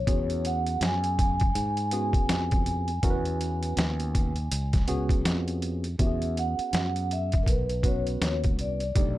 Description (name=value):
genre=hip hop, jazz-hop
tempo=81 BPM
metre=4/4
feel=swing 60% on 16ths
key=E major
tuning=A4 = 437 Hz
part: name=vibraphone with soft mallets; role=melody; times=0.0-9.2 s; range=A#4 to G#5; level=-31 LUFS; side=equal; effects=none
part: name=fretless electric bass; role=bass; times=0.0-9.2 s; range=B1 to G#2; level=-29 LUFS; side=equal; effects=none
part: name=tine electric piano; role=accompaniment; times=0.1-9.2 s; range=A3 to B4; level=-34 LUFS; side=right 2 dB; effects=medium stereo tremolo
part: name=trip hop sampler-style drum kit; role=drums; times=0.1-9.2 s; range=hi-hat, kick drum, snare drum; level=-27 LUFS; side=equal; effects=none
room=little or no reverb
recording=none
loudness=-24 LUFS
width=side -15 dB against mid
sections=0.0-6.0 A section; 6.0-9.2 B section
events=none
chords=0.1 E69